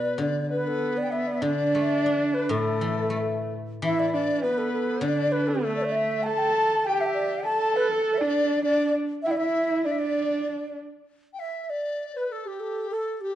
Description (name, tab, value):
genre	chinese traditional, Chinese chamber ensemble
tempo	99 BPM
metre	2/4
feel	rubato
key	D zhi mode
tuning	A4 = 438 Hz
part	mellow xiao	melody	0.0-13.3 s	G4 to A5	-28 LUFS	right 2 dB	none
part	bright large dizi	second line	0.0-13.4 s	G4 to A5	-30 LUFS	left 5 dB	none
part	guzheng	accompaniment	0.0-6.8 s	A2 to D4	-30 LUFS	left 2 dB	none
part	rich horsehead fiddle	second line	0.5-10.8 s	A3 to A4	-27 LUFS	right 2 dB	none
room	moderate recital hall reverb, RT60 1.5 s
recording	dark, warm production, nothing above 10.5 kHz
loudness	-23 LUFS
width	side -12 dB against mid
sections	0.0-1.4 A section; 1.4-11.1 B section; 11.1-13.4 C section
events	none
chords	none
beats	| 0.20 0.81 | 1.43 2.04 | 2.65 3.24 | 3.83 4.42 | 5.02 5.62 | 6.24 6.85 | 7.46 8.06 | 8.65 9.24 | 9.85 10.46 | 11.08 11.69 | 12.31 12.91